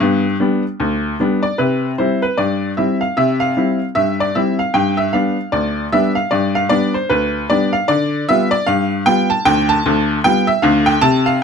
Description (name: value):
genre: ragtime piano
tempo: 76 BPM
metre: 2/4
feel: swing 59% on 16ths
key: unclear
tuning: A4 = 441 Hz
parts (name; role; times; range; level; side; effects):
- bright upright piano; solo; 0.0-11.4 s; D2 to A5; -14 LUFS; equal; none
room: little or no reverb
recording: close, detailed microphones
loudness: -14 LUFS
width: side -6 dB against mid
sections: 0.0-1.6 A section; 1.6-11.4 B section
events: none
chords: 0.0 G; 1.6 C; 4.7 G; 7.9 G7